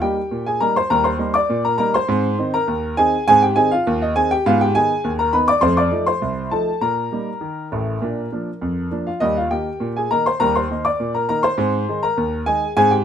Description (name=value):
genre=ragtime piano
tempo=101 BPM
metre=2/4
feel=straight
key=Eb major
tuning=A4 = 440 Hz
part: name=warm grand piano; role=solo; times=0.0-13.0 s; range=A1 to D6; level=-16 LUFS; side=equal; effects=none
room=light reverb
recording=minimal, uncompressed stereo recording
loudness=-17 LUFS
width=side -8 dB against mid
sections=0.0-13.0 A section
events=none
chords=0.0 Eb; 2.1 Ab; 4.5 Abm; 5.6 F7; 6.8 Eb/Bb; 8.0 Bb; 9.2 Eb; 11.6 Ab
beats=0.31 | 0.91 1.50 | 2.09 2.68 | 3.27 3.86 | 4.45 5.04 | 5.63 6.23 | 6.82 7.42 | 8.02 8.61 | 9.21 9.80 | 10.40 10.99 | 11.58 12.17 | 12.76